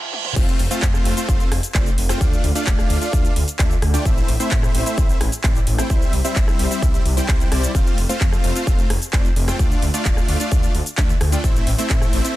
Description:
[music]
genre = EDM, festival progressive house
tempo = 130 BPM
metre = 4/4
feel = straight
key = F major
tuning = A4 = 440 Hz
[part]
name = big-room dance drum kit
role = drums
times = 0.1-12.3 s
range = crash cymbal, handclaps, hi-hat, rim click, shaker, toms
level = -26 LUFS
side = equal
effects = none
[part]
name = supersaw chords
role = riff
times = 0.4-12.4 s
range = G3 to G5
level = -24 LUFS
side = equal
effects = sidechain pumping, digital delay
[part]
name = wide detuned saw bass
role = bass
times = 0.4-12.2 s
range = D1 to A2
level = -22 LUFS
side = equal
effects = chorus, sidechain pumping
[part]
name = electronic kick drum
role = drums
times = 0.4-12.0 s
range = none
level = -18 LUFS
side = equal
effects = none
[sound]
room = little or no reverb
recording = dense, heavily limited modern master, high-pass filter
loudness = -16 LUFS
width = side -16 dB against mid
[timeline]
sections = 0.4-12.4 A section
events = stop 0.0-0.4; drum fill 0.1; drop 0.4-12.4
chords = 0.4 F; 2.2 Dm; 4.1 Am; 5.9 C; 7.7 F; 9.6 Dm; 11.4 Am

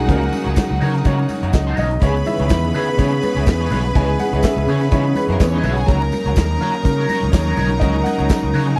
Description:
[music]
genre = disco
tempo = 124 BPM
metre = 4/4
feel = swing 56% on 16ths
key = unclear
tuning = A4 = 441 Hz
[part]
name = clear studio violin section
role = second line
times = 0.0-8.8 s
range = A#3 to B5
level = -28 LUFS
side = equal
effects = none
[part]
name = electric guitar at the edge of break-up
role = accompaniment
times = 0.0-8.7 s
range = A#3 to C#5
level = -30 LUFS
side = equal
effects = wah
[part]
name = warm concert grand piano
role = accompaniment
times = 0.0-8.8 s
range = D#3 to G#5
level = -26 LUFS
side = equal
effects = none
[part]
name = clear symphonic string section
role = sustained chords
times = 0.0-8.8 s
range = C#3 to G#4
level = -27 LUFS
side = equal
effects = none
[part]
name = overdriven fingered electric bass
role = bass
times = 0.0-8.7 s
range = B1 to C#3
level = -22 LUFS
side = equal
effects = none
[part]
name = warm soul drum kit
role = drums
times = 0.1-8.8 s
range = handclaps, hi-hat, kick drum, snare drum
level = -19 LUFS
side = equal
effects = none
[part]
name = congas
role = percussion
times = 0.1-8.7 s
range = none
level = -30 LUFS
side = equal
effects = none
[part]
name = tambourine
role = percussion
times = 0.1-8.7 s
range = none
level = -45 LUFS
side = equal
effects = none
[sound]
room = studio ambience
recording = none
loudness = -18 LUFS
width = mono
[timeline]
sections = 0.0-8.8 A section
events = grand piano solo 0.0-8.8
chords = 0.0 D#m7; 2.0 C#m7; 5.9 D#m7

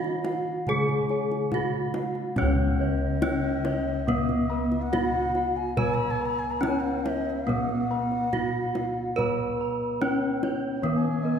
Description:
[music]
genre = Javanese gamelan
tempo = 70 BPM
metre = 4/4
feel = straight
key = Db slendro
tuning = A4 = 440 Hz
[part]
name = gamelan-type bronze metallophone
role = melody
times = 0.0-11.4 s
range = Cb4-45c to Cb5-45c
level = -28 LUFS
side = left 1 dB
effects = none
[part]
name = breathy bright bass bansuri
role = second line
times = 0.0-11.4 s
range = Db5 to Cb6-46c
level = -32 LUFS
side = left 4 dB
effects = none
[part]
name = gamelan-type bronze metallophone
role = accompaniment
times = 0.0-11.4 s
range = Db3 to Cb4-45c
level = -34 LUFS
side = right 4 dB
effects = none
[part]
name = gamelan-type bossed gongs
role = arpeggios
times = 0.0-11.4 s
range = Cb5-45c to Cb6-45c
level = -37 LUFS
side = left 6 dB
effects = none
[part]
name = gamelan-type bronze metallophone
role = arpeggios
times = 0.0-11.4 s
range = Cb5-45c to Cb6-45c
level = -36 LUFS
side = right 3 dB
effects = none
[part]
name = kendang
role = percussion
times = 0.0-11.1 s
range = none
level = -34 LUFS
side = equal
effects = none
[part]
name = gamelan-type bossed gongs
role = bass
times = 0.7-11.4 s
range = Db2 to Cb5-45c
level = -31 LUFS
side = equal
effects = none
[sound]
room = wet concert hall reverb, RT60 2.0 s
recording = recorded in a church or concert hall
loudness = -24 LUFS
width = side -7 dB against mid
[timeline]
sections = 0.0-11.4 A section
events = none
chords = none

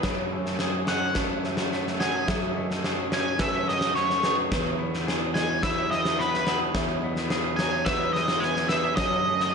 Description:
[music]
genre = post-rock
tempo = 107 BPM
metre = 4/4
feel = straight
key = E major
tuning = A4 = 440 Hz
[part]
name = felt-muted upright piano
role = arpeggios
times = 0.0-9.5 s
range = B4 to F#5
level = -37 LUFS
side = right 4 dB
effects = slapback echo
[part]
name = twangy electric guitar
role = arpeggios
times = 0.0-9.5 s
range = E2 to G#4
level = -34 LUFS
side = left 2 dB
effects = phaser, slapback echo
[part]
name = fuzz picked electric bass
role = bass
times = 0.0-9.5 s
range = E2 to F#2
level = -32 LUFS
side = equal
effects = overdrive
[part]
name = big rock drum kit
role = drums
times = 0.0-9.5 s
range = kick drum, snare drum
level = -27 LUFS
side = left 1 dB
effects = none
[part]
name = octave-fuzz lead guitar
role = melody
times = 0.9-9.5 s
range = B4 to G#5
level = -27 LUFS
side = equal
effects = distortion, slapback echo
[sound]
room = moderate lush hall reverb, RT60 1.7 s, studio reverb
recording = big arena sound, nothing above 10.9 kHz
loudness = -23 LUFS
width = side -5 dB against mid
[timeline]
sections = 0.0-9.5 A section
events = none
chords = 0.0 F#madd9; 4.5 Emaj7; 9.0 F#m

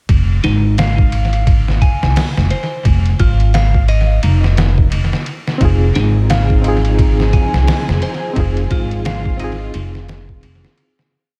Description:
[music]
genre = trip hop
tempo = 87 BPM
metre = 4/4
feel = swing 59% on 16ths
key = F minor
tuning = A4 = 440 Hz
[part]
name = upright bass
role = bass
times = 0.1-10.6 s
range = F1 to C2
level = -17 LUFS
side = equal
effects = tube saturation
[part]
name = trip hop sampler-style drum kit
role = drums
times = 0.1-11.1 s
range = hi-hat, kick drum, ride cymbal, snare drum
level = -19 LUFS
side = equal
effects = tape echo
[part]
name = clean electric guitar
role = arpeggios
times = 0.4-10.0 s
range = Eb4 to Ab5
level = -26 LUFS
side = equal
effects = phaser, tape echo
[part]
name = barky reed electric piano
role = accompaniment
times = 5.6-11.2 s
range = C4 to Ab4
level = -24 LUFS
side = equal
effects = tremolo, tape echo
[part]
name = warm studio string section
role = sustained chords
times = 5.6-11.1 s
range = F3 to Ab4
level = -29 LUFS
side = equal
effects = vintage 12-bit sampler grit
[sound]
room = little or no reverb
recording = echo-heavy mix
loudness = -14 LUFS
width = mono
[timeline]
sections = 0.1-11.1 groove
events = fade-out 7.4-11.1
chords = 0.1 Fm7

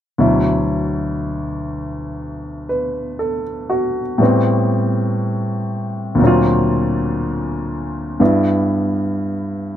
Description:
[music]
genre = solo jazz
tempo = 60 BPM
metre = 4/4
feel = swing 67% on 8ths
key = D major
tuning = A4 = 445 Hz
[part]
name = warm baby grand piano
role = solo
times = 0.2-9.8 s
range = D2 to B4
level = -16 LUFS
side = equal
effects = none
[sound]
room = light reverb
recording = close, detailed microphones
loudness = -16 LUFS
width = side -11 dB against mid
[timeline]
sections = 0.2-9.8 A section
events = none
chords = 0.2 D69; 4.2 Am9; 6.2 D7alt; 8.2 G6

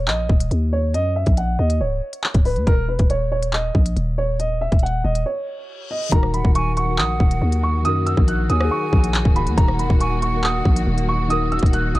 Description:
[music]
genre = hip hop, drill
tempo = 139 BPM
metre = 4/4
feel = half-time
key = Eb minor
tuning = A4 = 440 Hz
[part]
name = dark grand piano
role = melody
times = 0.0-12.0 s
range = Bb4 to Gb6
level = -24 LUFS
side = right 2 dB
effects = none
[part]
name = growling 808-style bass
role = bass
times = 0.0-12.0 s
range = Db1 to Gb2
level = -21 LUFS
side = equal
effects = none
[part]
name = drill drum kit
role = drums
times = 0.1-12.0 s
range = handclaps, hi-hat, kick drum, rim click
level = -18 LUFS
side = equal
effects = none
[part]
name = reverse cymbal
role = sound effects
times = 5.7-6.1 s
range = none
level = -31 LUFS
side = left 8 dB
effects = none
[part]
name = muted felt-like synth keys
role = accompaniment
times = 6.1-12.0 s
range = Eb3 to Db5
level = -26 LUFS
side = left 2 dB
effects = chorus
[part]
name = muted symphonic string section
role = sustained chords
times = 6.1-12.0 s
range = Eb3 to Gb4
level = -29 LUFS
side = equal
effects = none
[part]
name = breathy mellow silver concert flute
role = second line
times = 6.3-12.0 s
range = Eb5 to Ab5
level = -31 LUFS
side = right 2 dB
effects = tape echo
[sound]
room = small room reverb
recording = dark, warm production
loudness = -17 LUFS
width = side -18 dB against mid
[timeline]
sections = 0.0-6.1 A section; 6.1-12.0 B section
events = break 5.3-6.1; reverse cymbal 5.7-6.1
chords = 0.0 Eb5; 6.1 Ebm

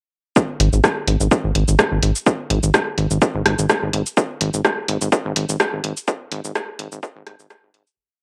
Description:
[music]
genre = minimal techno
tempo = 126 BPM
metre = 4/4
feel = swing 55% on 16ths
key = unclear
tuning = A4 = 441 Hz
[part]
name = electronic kick drum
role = drums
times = 0.4-7.6 s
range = none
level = -21 LUFS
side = equal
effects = overdrive, high-pass filter on kick, cassette tape, high-pass filter on room
[part]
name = punchy analog drum machine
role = drums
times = 0.4-8.0 s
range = hi-hat, rim click, shaker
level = -22 LUFS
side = equal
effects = overdrive, cassette tape
[part]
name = rubbery square bass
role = bass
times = 0.6-7.8 s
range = G#1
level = -21 LUFS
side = equal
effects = tube saturation, sidechain pumping
[sound]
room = light reverb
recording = home recording on cassette, high-pass filter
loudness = -19 LUFS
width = mono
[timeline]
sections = 0.4-8.0 build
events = build-up 0.4-8.0; filter sweep 0.4-8.0; fade-out 5.4-8.0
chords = none

